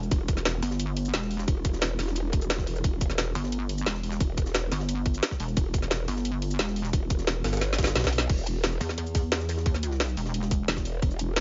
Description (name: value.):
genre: dark technical drum and bass.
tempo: 176 BPM.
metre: 4/4.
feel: straight.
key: E minor.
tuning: A4 = 440 Hz.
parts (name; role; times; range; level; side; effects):
pulsing pluck wobble bass; bass; 0.0-10.7 s; E1 to E2; -31 LUFS; equal; chorus.
drum and bass drum kit; drums; 0.0-11.4 s; crash cymbal, hi-hat, shaker, snare drum; -32 LUFS; equal; overdrive.
growl bass; bass; 0.1-11.4 s; E1 to B1; -32 LUFS; equal; chorus, tube saturation, sidechain pumping.
electronic kick drum; drums; 0.1-11.1 s; none; -29 LUFS; equal; none.
jungle sampler-style drum kit; drums; 0.1-11.4 s; hi-hat, ride cymbal, snare drum; -40 LUFS; equal; none.
room: little or no reverb.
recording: nothing above 7.5 kHz.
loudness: -28 LUFS.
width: mono.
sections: 0.0-8.3 A section; 8.3-11.4 A section.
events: drop 0.0-8.3, 8.3-11.4; drum fill 7.6-8.3.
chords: 0.0 E5.